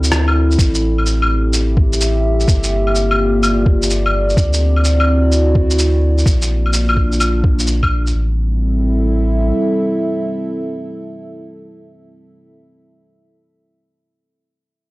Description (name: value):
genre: future garage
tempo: 127 BPM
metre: 4/4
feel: swing 66% on 16ths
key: A phrygian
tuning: A4 = 440 Hz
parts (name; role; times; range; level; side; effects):
- dark analog pad; sustained chords; 0.0-12.6 s; G3 to E5; -18 LUFS; equal; chorus, sidechain pumping
- warm sub bass; bass; 0.0-9.5 s; G1 to D2; -16 LUFS; equal; sidechain pumping
- electronic shaker, rim click and claves; drums; 0.0-8.1 s; none; -20 LUFS; left 1 dB; none
- electronic kick drum; drums; 0.6-7.9 s; none; -15 LUFS; equal; none
room: little or no reverb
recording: dry, gritty hardware recording, transformer saturation, cassette tape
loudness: -13 LUFS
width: side -20 dB against mid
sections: 0.0-8.1 A section; 8.1-11.9 B section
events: none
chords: 0.0 D9; 0.6 Am7; 2.5 Gm9; 4.4 D9; 6.3 Bbmaj7; 8.1 Am7